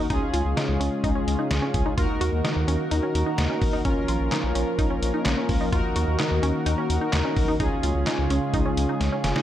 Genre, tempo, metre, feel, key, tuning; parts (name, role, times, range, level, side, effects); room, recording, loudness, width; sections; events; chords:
synth-pop; 128 BPM; 4/4; straight; A4 = 441 Hz
analog synth brass; accompaniment; 0.0-9.4 s; C#4 to A#4; -28 LUFS; equal; chorus
warm analog pad; sustained chords; 0.0-9.4 s; C#3 to F#4; -29 LUFS; left 1 dB; chorus
wide unison pluck; arpeggios; 0.0-9.4 s; C#4 to F#4; -30 LUFS; equal; tape echo
round analog bass; bass; 0.1-9.3 s; E#1 to D#2; -26 LUFS; equal
trip hop sampler-style drum kit; drums; 0.1-9.4 s; handclaps, hi-hat, kick drum, snare drum; -27 LUFS; equal
light reverb; -21 LUFS; side -11 dB against mid
0.0-9.4 A section
drum fill 9.0-9.4
0.1 C#; 2.0 D#m; 3.9 A#m; 5.7 D#m; 7.6 C#